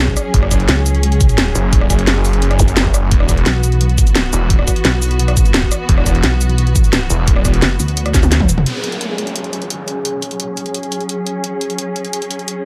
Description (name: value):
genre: dark technical drum and bass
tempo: 173 BPM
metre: 4/4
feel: straight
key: unclear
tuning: A4 = 439 Hz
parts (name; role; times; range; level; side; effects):
- warm studio string section; sustained chords; 0.0-12.7 s; E3 to G#4; -25 LUFS; equal; sidechain pumping, low-pass filter
- pulsing pluck wobble bass; bass; 0.0-8.7 s; E1 to D2; -17 LUFS; equal; chorus
- electronic kick drum; drums; 0.1-8.5 s; none; -16 LUFS; equal; none
- drum and bass drum kit; drums; 0.2-12.5 s; hi-hat, rim click, shaker, snare drum, toms; -20 LUFS; equal; none
- snarling distorted saw bass; bass; 0.3-7.6 s; E1 to F#1; -18 LUFS; equal; distortion, overdrive
- zap and downlifter; sound effects; 2.6-2.7, 8.7-11.4 s; none; -28 LUFS; equal; none
room: digital ambience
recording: none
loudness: -15 LUFS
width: mono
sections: 0.0-8.7 A section; 8.7-12.7 B section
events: drop 0.0-8.7; drum fill 8.1-8.7; band accent 8.3; filter sweep on string section 8.7-12.7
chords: 0.0 F#sus2; 3.1 E5; 8.7 F#sus2